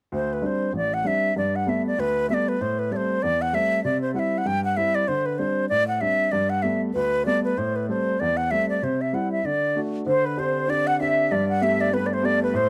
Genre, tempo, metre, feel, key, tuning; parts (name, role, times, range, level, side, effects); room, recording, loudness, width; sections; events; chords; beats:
celtic folk, Celtic reel; 193 BPM; 4/4; swing 58% on 8ths; D mixolydian; A4 = 440 Hz
wooden flute; melody; 0.1-12.7 s; B4 to G5; -26 LUFS; equal
clear upright piano; accompaniment; 0.1-12.7 s; A1 to G4; -28 LUFS; equal
bright wooden flute; second line; 10.1-12.7 s; B4 to F#5; -29 LUFS; equal
light reverb, studio ambience; dry, close 1970s-style studio recording; -23 LUFS; mono
0.1-10.1 A section; 10.1-12.7 A section
0.1 D7sus4; 1.4 Gadd9; 2.6 Am7; 3.8 C; 5.1 D7sus4; 6.3 Gadd9; 7.6 Am7; 8.8 C; 9.4 D; 10.1 D7sus4; 11.3 Gadd9
| 0.12 0.43 0.74 1.05 | 1.36 1.67 1.98 2.29 | 2.60 2.91 3.22 3.53 | 3.84 4.15 4.46 4.78 | 5.09 5.40 5.71 6.02 | 6.33 6.64 6.95 7.26 | 7.57 7.88 8.20 8.51 | 8.82 9.13 9.44 9.75 | 10.06 10.37 10.69 11.00 | 11.31 11.62 11.93 12.24 | 12.55